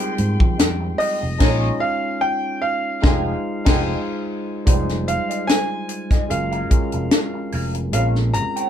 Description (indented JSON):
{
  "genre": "lush 1970s-style soul",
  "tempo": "74 BPM",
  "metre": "4/4",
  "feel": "swing 54% on 16ths",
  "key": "F minor",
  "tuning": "A4 = 435 Hz",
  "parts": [
    { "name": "clear grand piano", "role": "melody", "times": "0.0-8.7 s", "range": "Eb5 to Bb5", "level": "-25 LUFS", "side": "right 1 dB", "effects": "none" },
    { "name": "warm studio string section", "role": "second line", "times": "0.0-3.9 s", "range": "Ab4 to C6", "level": "-33 LUFS", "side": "left 1 dB", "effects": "none" },
    { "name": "tine electric piano", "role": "accompaniment", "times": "0.0-8.7 s", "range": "G3 to Db5", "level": "-26 LUFS", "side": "left 1 dB", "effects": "none" },
    { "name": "electric guitar through a small old amp", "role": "riff", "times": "0.0-8.7 s", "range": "Ab3 to G5", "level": "-29 LUFS", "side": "right 2 dB", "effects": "wah" },
    { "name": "tight funk drum kit", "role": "drums", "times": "0.0-8.7 s", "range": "crash cymbal, hi-hat, kick drum, snare drum", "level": "-19 LUFS", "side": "equal", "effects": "none" },
    { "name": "fingered electric bass", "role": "bass", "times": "0.2-8.4 s", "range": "F1 to F3", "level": "-23 LUFS", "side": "right 1 dB", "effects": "none" }
  ],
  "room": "light reverb",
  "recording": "band playing live in one room",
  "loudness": "-18 LUFS",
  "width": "side -9 dB against mid",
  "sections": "0.0-4.7 A section; 4.7-8.7 B section",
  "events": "band accent 1.4-4.7",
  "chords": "0.0 Fm9; 1.4 Bbm7; 3.0 Fm9; 6.3 Gbmaj9; 7.9 Bbm7"
}